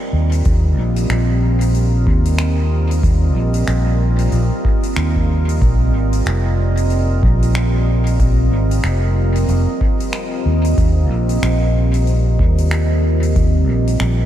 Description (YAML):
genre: ambient dub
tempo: 93 BPM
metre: 4/4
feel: swing 59% on 16ths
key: unclear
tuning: A4 = 440 Hz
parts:
  - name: deep dark ambient pad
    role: sustained chords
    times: 0.0-14.3 s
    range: G3 to Eb5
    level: -21 LUFS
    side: right 1 dB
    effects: chorus, built-in reverb
  - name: fingered electric bass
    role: bass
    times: 0.1-14.3 s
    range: F1 to Eb2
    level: -15 LUFS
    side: equal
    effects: tube saturation
  - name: soft-mallet drum kit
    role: drums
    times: 0.3-14.2 s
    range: finger snaps, hi-hat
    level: -29 LUFS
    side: equal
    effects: small room ambience, dub echo
  - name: electronic kick drum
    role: drums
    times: 0.5-13.5 s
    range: none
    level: -18 LUFS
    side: equal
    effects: small room ambience
room: small room reverb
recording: dark, warm production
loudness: -14 LUFS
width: side -11 dB against mid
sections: 0.0-14.3 A section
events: none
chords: 0.5 Eb; 5.6 Bbsus4; 10.8 Eb